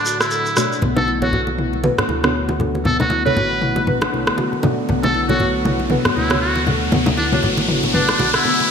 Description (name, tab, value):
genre	afro house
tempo	118 BPM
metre	4/4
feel	swing 58% on 16ths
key	B minor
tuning	A4 = 440 Hz
part	trumpet with metal mute	melody	0.0-8.7 s	D4 to B4	-22 LUFS	equal	vintage 12-bit sampler grit, ping-pong delay
part	warm analog pad	sustained chords	0.0-8.7 s	A2 to F#4	-24 LUFS	left 2 dB	wide subtle chorus
part	deep mellow chord stab	stabs	0.0-8.2 s	B2 to D5	-25 LUFS	right 2 dB	chorus, phaser, ping-pong delay
part	folk marimba with soft mallets	arpeggios	0.1-8.6 s	B3 to C#5	-26 LUFS	left 1 dB	low-pass filter, ping-pong delay
part	shekere	percussion	0.1-0.8 s	none	-25 LUFS	right 1 dB	none
part	deep house drum kit	drums	0.2-8.4 s	rim click, toms	-22 LUFS	left 1 dB	studio reverb, gated reverb
part	smooth synth bass	bass	0.8-8.4 s	A1 to D2	-27 LUFS	equal	none
part	bongos	percussion	0.8-8.6 s	none	-26 LUFS	right 1 dB	none
part	congas	percussion	0.8-8.7 s	none	-24 LUFS	left 2 dB	none
part	riser	sound effects	3.2-8.7 s	none	-24 LUFS	left 1 dB	none
room	moderate plate reverb, RT60 1.9 s, small room ambience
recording	bright 1980s-style digital production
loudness	-15 LUFS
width	side -7 dB against mid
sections	0.8-8.7 A section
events	build-up 0.8-8.7; drum fill 0.8-8.7; filter sweep on marimba 0.8-8.7; filter sweep on synth stab 0.8-8.7; filter sweep 0.8-8.7; riser 3.2-8.7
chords	0.0 Bm7